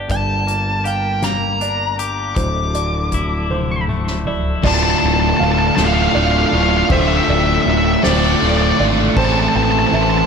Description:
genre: post-rock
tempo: 53 BPM (dotted quarters)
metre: 6/8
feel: straight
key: D minor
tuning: A4 = 440 Hz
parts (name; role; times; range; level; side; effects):
- felt-muted upright piano; arpeggios; 0.0-10.3 s; C5 to F5; -27 LUFS; right 6 dB; digital delay
- twangy electric guitar; arpeggios; 0.0-4.6 s; D2 to G4; -27 LUFS; left 4 dB; digital delay
- growling picked electric bass; bass; 0.0-10.2 s; D1 to A1; -20 LUFS; equal; overdrive
- nasal lead guitar with a parked wah; melody; 0.1-10.3 s; D5 to D6; -19 LUFS; equal; overdrive, digital delay
- muted studio string section; sustained chords; 0.1-10.3 s; F3 to C6; -30 LUFS; left 2 dB; none
- soft-mallet drum kit; drums; 0.1-10.1 s; crash cymbal, hi-hat, kick drum, ride cymbal, snare drum, toms; -22 LUFS; equal; none
- crunchy overdriven guitar; riff; 4.6-10.3 s; D2 to A4; -19 LUFS; left 12 dB; none
- sludgy distorted guitar; riff; 4.6-10.3 s; D2 to A4; -20 LUFS; right 14 dB; overdrive
room: light reverb, studio reverb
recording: none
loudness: -14 LUFS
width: side -6 dB against mid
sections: 0.0-4.6 A section; 4.6-10.3 B section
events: drum fill 3.5-4.6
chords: 0.1 Gm7; 2.4 Dmadd9; 4.6 Dm; 9.2 Am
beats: | 0.10 1.23 | 2.37 3.51 | 4.64 5.78 | 6.91 8.04 | 9.17

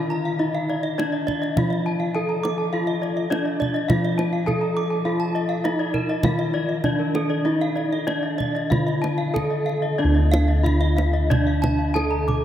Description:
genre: Balinese gamelan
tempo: 92-103 BPM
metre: 4/4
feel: straight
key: D pelog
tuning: A4 = 440 Hz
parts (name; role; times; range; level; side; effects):
- gamelan-type bronze metallophone; melody; 0.0-12.4 s; D4 to A4-30c; -25 LUFS; equal; none
- gamelan-type bronze metallophone; arpeggios; 0.0-12.4 s; Bb4-20c to D6; -29 LUFS; left 4 dB; none
- gamelan-type bossed gongs; bass; 0.0-12.4 s; D2 to F4-30c; -24 LUFS; equal; none
- gamelan-type bronze metallophone; arpeggios; 0.1-12.3 s; A4-30c to D6; -31 LUFS; right 3 dB; tape echo
- kendang; percussion; 0.1-12.4 s; none; -27 LUFS; right 2 dB; none
room: wet cathedral reverb, RT60 6.4 s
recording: in a vast, echoing space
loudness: -20 LUFS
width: side -11 dB against mid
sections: 0.0-10.0 A section; 10.0-12.4 B section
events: none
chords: none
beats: | 0.41 0.99 1.57 2.15 | 2.73 3.32 3.90 4.48 | 5.06 5.65 6.24 6.85 | 7.46 8.08 8.71 9.34 | 9.99 10.64 11.29 11.95

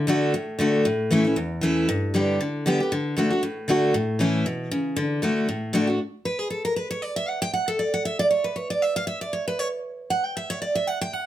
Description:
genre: bluegrass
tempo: 234 BPM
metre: 4/4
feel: swing 56% on 8ths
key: D major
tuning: A4 = 440 Hz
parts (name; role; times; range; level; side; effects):
- picked steel-string acoustic guitar; solo; 0.0-11.3 s; E2 to G5; -22 LUFS; equal; none
room: moderate studio reverb, RT60 0.6 s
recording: none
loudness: -22 LUFS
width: side -12 dB against mid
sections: 0.0-6.0 A section; 6.0-11.3 B section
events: steel-string acoustic guitar solo 6.0-11.3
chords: 0.0 D; 0.9 A; 1.9 G; 2.9 D; 3.9 A; 5.0 D; 6.0 N.C.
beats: 0.09 0.34 0.60 | 0.86 1.11 1.37 1.63 | 1.89 2.14 2.40 2.66 | 2.91 3.17 3.43 3.68 | 3.94 4.20 4.46 4.71 | 4.97 5.22 5.48 5.74 | 6.00 6.25 6.51 6.76 | 7.02 7.28 7.54 7.79 | 8.05 8.30 8.56 8.82 | 9.07 9.33 9.59 9.84 | 10.10 10.36 10.61 10.87 | 11.13

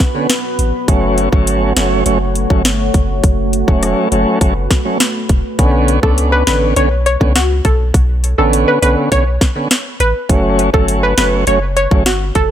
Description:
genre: dancehall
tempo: 102 BPM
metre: 4/4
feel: straight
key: B minor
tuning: A4 = 440 Hz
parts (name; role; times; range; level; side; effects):
- deep dark ambient pad; sustained chords; 0.0-5.6 s; A3 to C#5; -21 LUFS; right 1 dB; chorus, built-in reverb, sidechain pumping
- island pop drum kit; drums; 0.0-12.5 s; hi-hat, kick drum, rim click, snare drum; -14 LUFS; equal; none
- tonewheel organ; accompaniment; 0.1-12.0 s; D3 to D4; -16 LUFS; right 1 dB; overdrive, slow rotary speaker
- punchy sub bass; bass; 0.6-12.5 s; E1 to C#2; -16 LUFS; equal; none
- glassy wavetable pluck; melody; 6.0-12.5 s; F#4 to C#5; -16 LUFS; equal; chorus, digital delay
room: digital ambience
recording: none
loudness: -11 LUFS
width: side -10 dB against mid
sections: 0.0-5.6 A section; 5.6-12.5 B section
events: none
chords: 0.0 Bmadd9; 0.9 F#m; 5.6 Bmadd9; 10.3 F#m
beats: 0.29 | 0.88 1.47 2.06 2.65 | 3.24 3.82 4.41 5.00 | 5.59 6.18 6.77 7.35 | 7.94 8.53 9.12 9.71 | 10.29 10.88 11.47 12.06

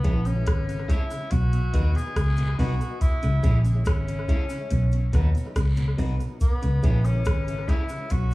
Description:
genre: roots reggae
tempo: 71 BPM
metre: 4/4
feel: straight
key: C# dorian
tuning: A4 = 435 Hz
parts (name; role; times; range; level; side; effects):
- clear tenor saxophone; melody; 0.0-8.3 s; B3 to G#4; -33 LUFS; left 1 dB; tape echo
- electric guitar at the edge of break-up; accompaniment; 0.0-7.8 s; D#4 to C#5; -40 LUFS; right 1 dB; lush chorus, tape echo
- mellow tonewheel organ; accompaniment; 0.0-8.0 s; B2 to E4; -35 LUFS; left 1 dB; overdrive, chorus vibrato, slow rotary speaker, tape echo
- clean electric guitar; riff; 0.0-8.3 s; G#2 to D#3; -33 LUFS; left 3 dB; none
- vintage muted fingered electric bass; bass; 0.0-8.3 s; G#1 to D#2; -22 LUFS; equal; none
- soft vintage rhythm box; drums; 0.0-8.3 s; hi-hat, kick drum, rim click; -24 LUFS; equal; none
- cabasa and guiro; percussion; 0.0-8.3 s; none; -49 LUFS; right 2 dB; none
room: digital ambience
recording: echo-heavy mix, small room ambience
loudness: -21 LUFS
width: side -19 dB against mid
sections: 0.0-8.3 A section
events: none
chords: 0.0 C#m; 1.3 B; 3.0 C#m; 4.7 B; 6.4 C#m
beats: 0.47 1.31 2.16 | 3.01 3.86 4.71 5.56 | 6.41 7.26 8.11

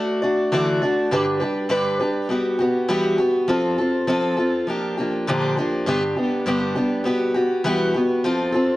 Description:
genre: rock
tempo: 101 BPM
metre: 4/4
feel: straight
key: G major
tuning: A4 = 441 Hz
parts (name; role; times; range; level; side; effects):
- picked acoustic archtop guitar; solo; 0.0-8.8 s; G2 to D5; -19 LUFS; equal; slapback echo
room: light reverb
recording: worn, warbling old tape, cassette tape, warbly pitch drift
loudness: -19 LUFS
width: side -17 dB against mid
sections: 0.0-1.1 A section; 1.1-8.8 B section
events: none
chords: 0.0 Dadd9; 1.1 G; 2.3 Emadd9; 3.5 F; 4.7 Bb6; 5.9 G; 7.0 Emadd9; 8.2 F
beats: 0.52 | 1.11 1.70 2.30 2.89 | 3.49 4.08 4.67 5.27 | 5.86 6.45 7.05 7.64 | 8.23

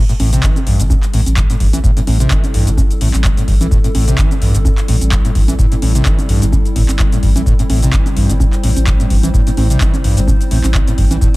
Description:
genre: acid house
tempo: 128 BPM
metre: 4/4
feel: swing 55% on 16ths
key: A minor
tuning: A4 = 440 Hz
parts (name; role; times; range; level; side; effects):
- warbly tape-like pad; sustained chords; 0.6-11.4 s; G3 to C5; -24 LUFS; left 1 dB; chorus, built-in reverb, vintage 12-bit sampler grit, sidechain pumping
- overdriven acid bass; riff; 0.0-11.4 s; G2 to E3; -18 LUFS; equal; lush chorus, sidechain pumping, analog delay
- electro analog drum machine; drums; 0.1-11.4 s; congas, handclaps, hi-hat, shaker; -22 LUFS; right 1 dB; analog delay
- saturated sub bass; bass; 0.2-11.2 s; G1 to A1; -15 LUFS; equal; tube saturation, sidechain pumping
- electronic kick drum; drums; 0.4-11.3 s; none; -13 LUFS; equal; none
room: little or no reverb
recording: echo-heavy mix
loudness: -11 LUFS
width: side -20 dB against mid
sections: 0.0-11.4 A section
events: none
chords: 0.0 Am7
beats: 0.43 0.90 1.37 | 1.84 2.31 2.78 3.25 | 3.71 4.18 4.65 5.12 | 5.59 6.06 6.53 7.00 | 7.46 7.93 8.40 8.87 | 9.34 9.81 10.28 10.74 | 11.21

